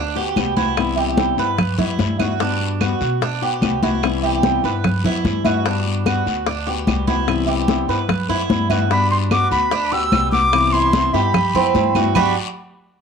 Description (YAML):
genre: latin, Cuban son and guajira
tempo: 148 BPM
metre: 4/4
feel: straight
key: G major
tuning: A4 = 442 Hz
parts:
  - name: Cuban tres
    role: arpeggios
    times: 0.0-12.4 s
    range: G3 to B4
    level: -22 LUFS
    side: right 10 dB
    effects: slapback echo
  - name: upright bass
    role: bass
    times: 0.0-12.3 s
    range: G1 to B2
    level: -24 LUFS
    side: equal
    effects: none
  - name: flamenco guitar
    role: accompaniment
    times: 0.2-12.3 s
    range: C3 to F#4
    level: -23 LUFS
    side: left 12 dB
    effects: none
  - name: bongos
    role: percussion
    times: 0.2-12.3 s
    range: none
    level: -27 LUFS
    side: left 12 dB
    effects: none
  - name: congas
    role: percussion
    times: 0.2-12.2 s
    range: none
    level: -22 LUFS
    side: left 1 dB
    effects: none
  - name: claves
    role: percussion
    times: 0.4-12.2 s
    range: none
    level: -30 LUFS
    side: right 14 dB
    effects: none
  - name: guiro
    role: percussion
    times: 0.4-12.3 s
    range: none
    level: -32 LUFS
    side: left 14 dB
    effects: none
  - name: breathy bright jazz flute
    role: melody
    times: 8.9-12.3 s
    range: B5 to E6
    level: -18 LUFS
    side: equal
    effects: none
room: wet spring reverb, RT60 1.1 s, studio ambience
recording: 1960s-style stereo with parts hard left and right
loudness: -16 LUFS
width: side -6 dB against mid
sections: 0.0-8.9 A section; 8.9-12.2 B section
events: none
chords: 0.0 Gmaj7; 0.8 Cmaj7; 2.4 Gmaj7; 4.0 Cmaj7; 5.7 Gmaj7; 7.3 Cmaj7; 8.9 Gmaj7; 10.5 Cmaj7; 12.2 Gmaj7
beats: 0.37 | 0.77 1.18 1.58 1.99 | 2.40 2.80 3.21 3.62 | 4.02 4.43 4.84 5.24 | 5.65 6.06 6.46 6.87 | 7.28 7.68 8.09 8.50 | 8.90 9.31 9.72 10.12 | 10.53 10.94 11.34 11.75 | 12.16